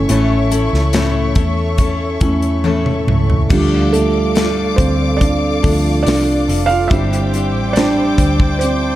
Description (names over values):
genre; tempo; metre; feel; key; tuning
pop ballad; 70 BPM; 4/4; straight; D minor; A4 = 440 Hz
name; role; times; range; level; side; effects
felt-muted upright piano; accompaniment; 0.0-9.0 s; E3 to F5; -17 LUFS; right 2 dB; none
warm studio string section; sustained chords; 0.0-9.0 s; A4 to D6; -23 LUFS; left 1 dB; none
picked steel-string acoustic guitar; arpeggios; 0.0-9.0 s; A2 to C5; -22 LUFS; left 4 dB; none
vintage muted fingered electric bass; bass; 0.0-9.0 s; F1 to E2; -18 LUFS; equal; none
modern studio drum kit; drums; 0.1-8.8 s; crash cymbal, hi-hat, kick drum, snare drum, toms; -18 LUFS; equal; none
room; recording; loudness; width
light reverb; dark, warm production; -12 LUFS; side -14 dB against mid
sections
0.0-3.5 A section; 3.5-9.0 B section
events
felt piano solo 0.0-3.5, 3.5-9.0; drum fill 2.6-3.5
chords
0.0 A; 3.5 Dm; 6.9 Gsus4